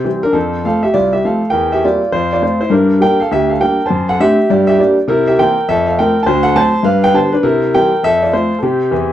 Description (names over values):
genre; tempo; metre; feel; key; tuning
jazz, stride piano; 203 BPM; 4/4; swing 63% on 8ths; F major; A4 = 436 Hz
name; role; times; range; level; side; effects
clear concert grand piano; solo; 0.0-9.1 s; C2 to A5; -11 LUFS; equal; none
room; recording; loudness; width
wet studio reverb, RT60 0.5 s; dark, warm production; -11 LUFS; side -12 dB against mid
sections
0.4-9.1 A section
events
grand piano fill 8.9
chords
0.4 F; 1.5 C7/E; 2.1 F; 2.7 Gm; 3.9 D7/F#; 4.5 Gm; 5.1 C7; 5.7 F; 6.3 D7; 6.9 G; 7.4 C7; 8.0 F; 8.6 C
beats
0.06 | 0.35 0.65 0.94 1.24 | 1.54 1.83 2.13 2.42 | 2.72 3.02 3.31 3.61 | 3.90 4.20 4.49 4.79 | 5.08 5.38 5.67 5.97 | 6.26 6.56 6.85 7.15 | 7.44 7.74 8.03 8.32 | 8.62 8.91